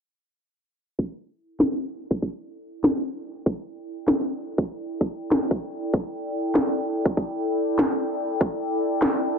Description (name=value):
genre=glitch hop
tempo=97 BPM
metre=4/4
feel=swing 62% on 16ths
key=unclear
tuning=A4 = 440 Hz
part: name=electronic kick drum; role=drums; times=1.0-8.6 s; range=none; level=-24 LUFS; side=equal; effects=high-pass filter on kick, high-pass filter on room
part: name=warbly tape-like pad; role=texture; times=2.0-9.4 s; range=E4 to G5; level=-28 LUFS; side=left 1 dB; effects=chorus, built-in reverb, sidechain pumping
part: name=electronic snare drum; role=drums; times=1.6-9.2 s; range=none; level=-22 LUFS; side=equal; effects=none
room=light reverb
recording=dense, heavily limited modern master, low-pass filter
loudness=-23 LUFS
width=side -6 dB against mid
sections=1.0-9.4 A section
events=fade-in on ambient pad 1.0-9.4; filter sweep 1.0-9.4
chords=1.0 A7(no3)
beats=| 0.98 1.60 2.22 2.84 | 3.46 4.08 4.70 5.31 | 5.93 6.55 7.17 7.79 | 8.41 9.03